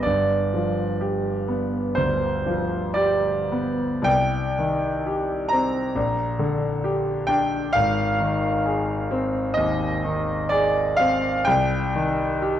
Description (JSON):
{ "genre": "classical, romantic nocturne for solo piano", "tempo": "51-70 BPM", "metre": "4/4", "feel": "rubato", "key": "unclear", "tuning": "A4 = 440 Hz", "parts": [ { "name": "clear concert grand piano", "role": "solo", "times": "0.0-12.6 s", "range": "G1 to Bb5", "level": "-20 LUFS", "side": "equal", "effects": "none" } ], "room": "wet recital hall reverb, RT60 1.6 s", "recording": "worn, warbling old tape, cassette tape, warbly pitch drift", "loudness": "-20 LUFS", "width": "side -10 dB against mid", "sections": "0.0-12.6 A section", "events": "none", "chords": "0.1 G7; 4.1 Cm; 6.0 Gm/Bb; 7.7 Ab6; 11.5 Cm" }